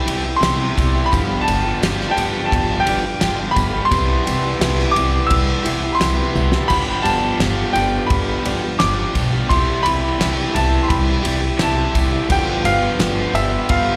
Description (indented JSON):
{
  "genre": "folk rock and heartland rock",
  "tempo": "86 BPM",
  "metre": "4/4",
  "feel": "straight",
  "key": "G mixolydian",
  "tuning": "A4 = 440 Hz",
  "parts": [
    { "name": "bright grand piano", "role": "melody", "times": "0.0-14.0 s", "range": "E5 to E6", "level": "-24 LUFS", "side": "equal", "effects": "slapback echo" },
    { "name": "picked plugged-in steel-string acoustic guitar", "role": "accompaniment", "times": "0.0-14.0 s", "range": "G2 to G4", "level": "-28 LUFS", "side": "equal", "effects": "slapback echo" },
    { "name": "pedal harmonium", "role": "sustained chords", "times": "0.0-14.0 s", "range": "B3 to C6", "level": "-32 LUFS", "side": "equal", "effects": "none" },
    { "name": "overdriven electric guitar", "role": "riff", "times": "0.0-14.0 s", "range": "G2 to G4", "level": "-26 LUFS", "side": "equal", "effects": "slapback echo" },
    { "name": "upright bass", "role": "bass", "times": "0.1-13.9 s", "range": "G1 to C2", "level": "-24 LUFS", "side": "equal", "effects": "none" },
    { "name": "damped 70s drum kit", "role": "drums", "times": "0.1-13.9 s", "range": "crash cymbal, kick drum, ride cymbal, snare drum, toms", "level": "-25 LUFS", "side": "equal", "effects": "none" },
    { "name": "tambourine", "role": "percussion", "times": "0.4-13.8 s", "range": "none", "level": "-40 LUFS", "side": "equal", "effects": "none" }
  ],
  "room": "light reverb",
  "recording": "live gig heard through the venue's PA, recital hall reverb",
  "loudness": "-18 LUFS",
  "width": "mono",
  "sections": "0.0-14.0 A section",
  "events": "drum fill 6.4-6.7",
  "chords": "0.0 Cmaj7; 1.1 G7; 3.9 Cmaj7; 6.7 G7; 9.5 Cmaj7; 12.3 G7"
}